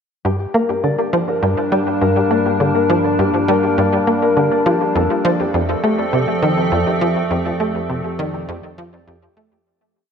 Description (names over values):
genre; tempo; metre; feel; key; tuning
ambient, sequencer-driven space music; 102 BPM; 4/4; straight; G minor; A4 = 440 Hz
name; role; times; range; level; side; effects
evolving wavetable pad; sustained chords; 0.7-9.6 s; F3 to Bb4; -19 LUFS; equal; chorus, built-in reverb, shimmer reverb
concert harp; arpeggios; 0.2-10.1 s; G4 to D5; -22 LUFS; left 4 dB; auto-pan, tape echo, shimmer reverb
tight sequencer bass; riff; 0.2-9.6 s; F2 to Bb3; -18 LUFS; equal; wide subtle chorus, tape echo, shimmer reverb
analog drone; bass; 1.3-9.6 s; F2 to G2; -31 LUFS; right 1 dB; chorus, tube saturation
room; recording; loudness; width
moderate plate reverb, RT60 3.6 s; none; -15 LUFS; side -6 dB against mid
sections
0.2-9.7 A section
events
fade-out 6.5-9.7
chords
0.2 Gm; 5.0 F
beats
| 0.25 0.84 1.43 2.02 | 2.60 3.19 3.78 4.37 | 4.96 5.54 6.13 6.72 | 7.31 7.90 8.48 9.07